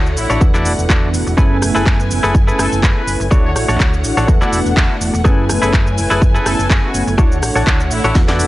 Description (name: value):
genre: filtered disco house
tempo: 124 BPM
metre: 4/4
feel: swing 55% on 16ths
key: F# minor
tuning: A4 = 440 Hz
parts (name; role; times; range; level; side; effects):
- funky polysynth comp; accompaniment; 0.0-8.5 s; A3 to G#5; -20 LUFS; right 1 dB; chorus, tremolo, phaser, sidechain pumping
- rich symphonic string section; sustained chords; 0.0-8.5 s; D3 to G#5; -25 LUFS; equal; sidechain pumping
- direct-recorded clean electric guitar; riff; 0.0-8.5 s; D4 to E5; -19 LUFS; left 1 dB; sidechain pumping
- hollow-body short-scale fingered electric bass; bass; 0.0-8.5 s; E1 to F#2; -19 LUFS; equal; sidechain pumping
- house drum kit; drums; 0.1-8.5 s; handclaps, hi-hat, rim click, shaker, snare drum; -21 LUFS; equal; sidechain pumping on perc, sidechain pumping on hats
- warm trumpet section; melody; 0.2-8.2 s; E4 to C#5; -25 LUFS; left 1 dB; sidechain pumping, tape echo
- electronic kick drum; drums; 0.4-8.3 s; none; -13 LUFS; equal; none
room: little or no reverb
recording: dry, gritty hardware recording, nothing above 11.0 kHz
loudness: -12 LUFS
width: side -17 dB against mid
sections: 0.0-8.5 A section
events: drum fill 8.2-8.5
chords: 0.4 E9sus4; 1.4 F#m11; 3.3 Dmaj7; 4.3 E9sus4; 5.2 F#m11; 7.2 Dmaj7